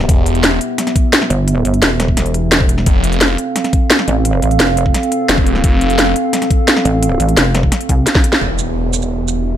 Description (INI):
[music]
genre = dark technical drum and bass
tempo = 173 BPM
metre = 4/4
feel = straight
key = E phrygian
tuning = A4 = 440 Hz
[part]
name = dark analog pad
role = sustained chords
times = 0.0-9.6 s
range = B3 to F5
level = -18 LUFS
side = right 2 dB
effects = wide subtle chorus, sidechain pumping
[part]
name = phased detuned saw bass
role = bass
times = 0.0-0.6, 2.9-6.1, 8.4-9.6 s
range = E1 to F1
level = -16 LUFS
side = equal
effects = phaser, tube saturation, sidechain pumping
[part]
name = drum and bass drum kit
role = drums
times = 0.0-9.3 s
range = hi-hat, shaker, snare drum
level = -14 LUFS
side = equal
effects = none
[part]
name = electronic kick drum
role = drums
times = 0.1-8.2 s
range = none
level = -14 LUFS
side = equal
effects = overdrive
[part]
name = pulsing pluck wobble bass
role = bass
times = 1.3-8.1 s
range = E1 to C2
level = -15 LUFS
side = equal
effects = chorus
[part]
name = impact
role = sound effects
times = 8.4-9.6 s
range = none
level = -25 LUFS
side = equal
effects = none
[sound]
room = light reverb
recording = none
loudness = -11 LUFS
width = side -11 dB against mid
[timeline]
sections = 0.0-8.4 A section; 8.4-9.6 B section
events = drum fill 8.1-8.4; band accent 8.3; impact 8.4-9.6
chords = 0.0 Em; 2.9 F; 8.4 Em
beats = | 0.09 0.44 0.78 1.13 | 1.48 1.82 2.17 2.52 | 2.86 3.21 3.56 3.90 | 4.25 4.60 4.95 5.29 | 5.64 5.99 6.33 6.68 | 7.03 7.37 7.72 8.07 | 8.41 8.76 9.11 9.45